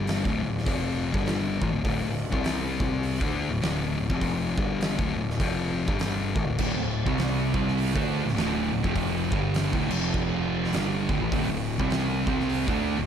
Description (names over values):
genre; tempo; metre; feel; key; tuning
stoner and doom metal; 101 BPM; 4/4; swing 61% on 8ths; D minor; A4 = 438 Hz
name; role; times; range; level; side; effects
thick fuzz guitar; riff; 0.0-13.1 s; D2 to D4; -27 LUFS; left 4 dB; distortion
fuzz picked electric bass; bass; 0.0-13.1 s; D1 to D2; -33 LUFS; right 1 dB; overdrive
oversized low-tuned drum kit; drums; 0.1-12.9 s; crash cymbal, hi-hat, kick drum, snare drum; -30 LUFS; right 1 dB; none
thick fuzz guitar; riff; 6.6-13.1 s; D2 to D4; -29 LUFS; right 13 dB; distortion
room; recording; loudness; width
light reverb, small room reverb; dark, warm production; -24 LUFS; side -8 dB against mid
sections
0.0-13.1 A section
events
none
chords
0.0 Dm; 9.8 F5; 10.7 D5